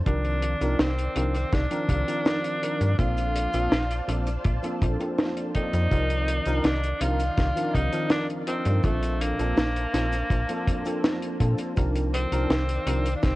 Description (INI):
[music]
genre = vaporwave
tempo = 82 BPM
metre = 4/4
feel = straight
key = C dorian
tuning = A4 = 440 Hz
[part]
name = soft string machine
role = sustained chords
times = 0.0-13.4 s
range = Eb3 to A5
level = -38 LUFS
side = equal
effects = none
[part]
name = slap-like FM bass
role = bass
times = 0.0-13.4 s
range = Bb1 to Bb2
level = -26 LUFS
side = equal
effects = tube saturation
[part]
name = bright tenor saxophone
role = melody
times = 0.1-13.4 s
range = A3 to F4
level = -30 LUFS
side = equal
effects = tape echo
[part]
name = tine electric piano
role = accompaniment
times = 0.1-13.1 s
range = Bb2 to D5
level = -30 LUFS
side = equal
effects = ensemble chorus
[part]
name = deep reggae drum kit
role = drums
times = 0.1-13.4 s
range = cabasa, hi-hat, snare drum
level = -27 LUFS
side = equal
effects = small room ambience
[part]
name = kick drum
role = drums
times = 0.1-13.4 s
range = none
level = -26 LUFS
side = equal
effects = small room ambience
[sound]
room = little or no reverb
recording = worn, warbling old tape, cassette tape, warbly pitch drift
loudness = -23 LUFS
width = side -19 dB against mid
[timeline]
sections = 0.0-13.4 A section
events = none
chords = 0.1 Cm11; 3.0 Bbmaj9; 5.9 Cm11; 8.8 Bbmaj9; 11.8 Cm11